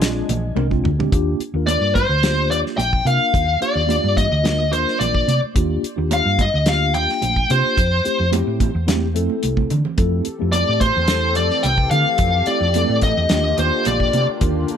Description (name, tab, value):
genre	electric jazz fusion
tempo	108 BPM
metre	4/4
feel	straight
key	Eb major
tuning	A4 = 440 Hz
part	smooth overdriven lead guitar	melody	0.0-14.3 s	C5 to Ab5	-19 LUFS	left 2 dB	none
part	trombone with bucket mute	second line	0.0-0.6 s	Ab3	-35 LUFS	right 5 dB	none
part	mellow tine electric piano	accompaniment	0.0-14.7 s	E3 to Bb4	-25 LUFS	equal	medium stereo tremolo
part	brassy analog pad	sustained chords	0.0-1.1, 10.0-14.8 s	D3 to A4	-29 LUFS	left 2 dB	chorus
part	hollow-body short-scale fingered electric bass	bass	0.0-14.7 s	Bb1 to D3	-21 LUFS	equal	none
part	damped 70s drum kit	drums	0.0-14.8 s	hi-hat, kick drum, snare drum, toms	-22 LUFS	equal	none
part	congas	percussion	0.0-14.5 s	none	-28 LUFS	right 9 dB	none
room	little or no reverb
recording	none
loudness	-16 LUFS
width	side -8 dB against mid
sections	0.0-1.1 A section; 1.1-14.8 B section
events	drum fill 0.6-1.1, 9.3-10.0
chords	0.0 Bb9; 1.1 Ebmaj9; 7.8 Fmaj9; 13.3 Ebmaj9